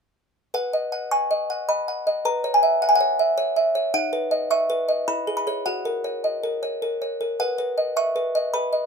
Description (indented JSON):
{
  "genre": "classical, lullaby for music box",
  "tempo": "105 BPM",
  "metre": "3/4",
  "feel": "straight",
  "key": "B major",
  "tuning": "A4 = 439 Hz",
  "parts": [
    { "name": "music box", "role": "solo", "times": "0.5-8.9 s", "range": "D#4 to C#6", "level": "-21 LUFS", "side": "equal", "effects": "none" }
  ],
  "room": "light reverb",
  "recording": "minimal, uncompressed stereo recording",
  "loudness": "-21 LUFS",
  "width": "side -5 dB against mid",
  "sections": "0.5-8.9 A section",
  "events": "none",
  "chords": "0.5 B; 2.2 F#5/B; 3.9 B/D#; 5.1 C#m7/E; 5.7 F#; 7.4 B"
}